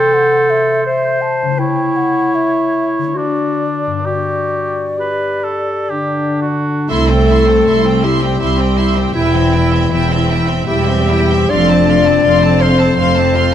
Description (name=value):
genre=classical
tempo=56-85 BPM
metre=3/4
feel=rubato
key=G major, C major from 6.9 s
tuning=A4 = 440 Hz
part: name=mellow hollow concert flute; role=second line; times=0.0-6.5 s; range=D5 to A5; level=-21 LUFS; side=left 1 dB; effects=none
part: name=warm clarinet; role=second line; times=0.0-13.5 s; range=D4 to D5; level=-16 LUFS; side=left 1 dB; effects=none
part: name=warm oboe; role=second line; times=0.0-6.9 s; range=D4 to C#5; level=-21 LUFS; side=right 2 dB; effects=none
part: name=concert harp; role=arpeggios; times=0.0-13.5 s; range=E2 to C6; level=-23 LUFS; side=left 9 dB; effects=none
part: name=dark French horn section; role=sustained chords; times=5.9-13.5 s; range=D3 to D4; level=-19 LUFS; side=left 5 dB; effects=none
part: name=warm studio violin section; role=melody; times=6.9-13.5 s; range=E5 to C6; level=-22 LUFS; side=left 1 dB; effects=none
part: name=rich studio violin section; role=second line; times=6.9-13.5 s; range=C5 to G5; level=-23 LUFS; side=right 1 dB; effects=none
part: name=rich studio viola section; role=accompaniment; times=6.9-13.5 s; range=A3 to E4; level=-21 LUFS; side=right 4 dB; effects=none
part: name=rich studio cello section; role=bass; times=6.9-13.5 s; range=C2 to F2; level=-18 LUFS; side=right 2 dB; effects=none
part: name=warm studio double bass section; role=bass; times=6.9-13.5 s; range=E1 to C2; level=-18 LUFS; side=right 3 dB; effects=none
room=moderate recital hall reverb, RT60 1.4 s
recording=none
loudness=-12 LUFS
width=side -10 dB against mid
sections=0.0-6.9 A section; 6.9-13.5 B section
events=none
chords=0.0 Am/C; 1.6 A7/C#; 3.2 D7; 4.1 G; 6.9 C; 9.2 C/E; 11.5 F